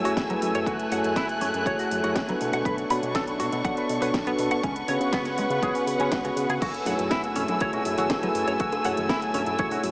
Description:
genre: nu-disco, nu disco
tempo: 121 BPM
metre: 4/4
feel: straight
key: F# minor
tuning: A4 = 441 Hz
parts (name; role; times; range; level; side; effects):
- bell-like tine electric piano; accompaniment; 0.0-9.9 s; A3 to C#5; -28 LUFS; equal; sidechain pumping, diffuse ambient delay
- warm chamber violin section; sustained chords; 0.0-9.9 s; A3 to F#6; -28 LUFS; equal; sidechain pumping
- chorused synth bass; bass; 0.0-9.9 s; F#1 to C#3; -34 LUFS; equal; none
- semi-hollow electric guitar; riff; 0.1-9.8 s; C#3 to B5; -30 LUFS; equal; analog chorus, diffuse ambient delay
- house drum kit; drums; 0.1-9.9 s; crash cymbal, hi-hat, snare drum; -34 LUFS; equal; small room ambience
- electronic kick drum; drums; 0.2-9.7 s; none; -31 LUFS; equal; small room ambience
- bongos and congas; percussion; 6.6-9.8 s; none; -35 LUFS; left 1 dB; none
room: wet huge ambient reverb, RT60 8.2 s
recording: dreamy mix soaked in reverb, small speaker sound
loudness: -23 LUFS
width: side -25 dB against mid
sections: 0.0-9.9 A section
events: none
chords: 0.0 F#m9; 2.4 Bm9; 4.6 C#7sus4; 6.6 F#m9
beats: 0.17 | 0.67 1.16 1.66 2.16 | 2.65 3.15 3.64 4.14 | 4.63 5.13 5.63 6.12 | 6.62 7.12 7.61 8.11 | 8.60 9.10 9.59

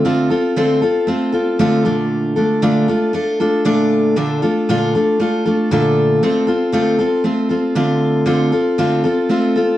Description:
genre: pop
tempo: 117 BPM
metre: 4/4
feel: swing 55% on 16ths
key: D minor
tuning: A4 = 440 Hz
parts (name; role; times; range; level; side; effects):
- picked steel-string acoustic guitar; solo; 0.0-9.8 s; Bb2 to A4; -14 LUFS; equal; slapback echo
room: light reverb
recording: dry, close 1970s-style studio recording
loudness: -14 LUFS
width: side -14 dB against mid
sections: 0.0-9.8 A section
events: none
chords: 0.0 Dm7; 1.9 Bbmaj7; 6.2 Dm7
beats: | 0.05 0.56 1.08 1.59 | 2.11 2.62 3.14 3.65 | 4.16 4.68 5.19 5.71 | 6.22 6.73 7.25 7.76 | 8.27 8.78 9.30

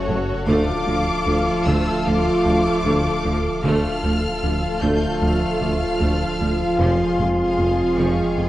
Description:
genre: cinematic, hybrid orchestral and electronic film score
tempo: 76 BPM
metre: 4/4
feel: straight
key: unclear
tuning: A4 = 440 Hz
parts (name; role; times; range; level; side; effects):
- warm symphonic violin section; melody; 0.0-8.5 s; C6 to G6; -29 LUFS; left 2 dB; none
- warm symphonic violin section; second line; 0.0-8.5 s; Ab4 to F5; -27 LUFS; left 3 dB; none
- rich symphonic viola section; accompaniment; 0.0-8.5 s; C3 to Gb4; -29 LUFS; right 1 dB; none
- clear trombone section; sustained chords; 0.0-8.5 s; Db3 to A3; -26 LUFS; right 3 dB; none
- dark French horn section; sustained chords; 0.0-8.5 s; A3 to Gb4; -26 LUFS; left 1 dB; none
- warbly tape-like pad; sustained chords; 0.0-8.5 s; A3 to F5; -31 LUFS; equal; none
- punchy sub bass; bass; 0.0-8.5 s; D1 to Gb1; -33 LUFS; equal; none
- glassy wavetable pluck; arpeggios; 0.1-8.5 s; D3 to A3; -30 LUFS; right 1 dB; chorus
- round analog bass; riff; 0.1-8.5 s; D2 to Gb2; -27 LUFS; left 1 dB; none
- dark symphonic cello section; bass; 0.1-8.5 s; D2 to Gb2; -28 LUFS; right 1 dB; none
- warm symphonic double bass section; bass; 0.1-8.5 s; F1 to D2; -29 LUFS; right 2 dB; none
- warm tuba; bass; 0.1-8.5 s; F1 to D2; -27 LUFS; right 1 dB; none
room: wet scoring stage reverb, RT60 2.0 s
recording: worn, warbling old tape, cassette tape, warbly pitch drift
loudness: -17 LUFS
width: side -15 dB against mid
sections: 0.0-8.5 A section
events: none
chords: 0.5 Dm; 6.8 Fm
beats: | 0.48 1.27 2.06 2.85 | 3.64 4.43 5.22 6.01 | 6.80 7.59 8.38

